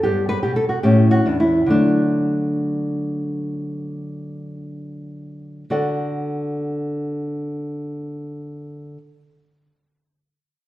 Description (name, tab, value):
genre	classical, baroque-style dance for nylon-string guitar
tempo	52-77 BPM (dotted quarters)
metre	12/8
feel	rubato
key	D major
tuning	A4 = 440 Hz
part	nylon-string guitar	solo	0.0-9.0 s	E2 to F#5	-20 LUFS	equal	none
room	wet recital hall reverb, RT60 1.4 s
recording	minimal, uncompressed stereo recording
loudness	-18 LUFS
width	side -15 dB against mid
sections	0.0-5.7 A section; 5.7-10.2 B section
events	slowing down 0.0-5.7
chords	0.0 Gmaj9; 0.9 A; 1.7 D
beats	0.05 0.85 | 1.71 2.61 3.56 4.58 | 5.70 6.84 7.96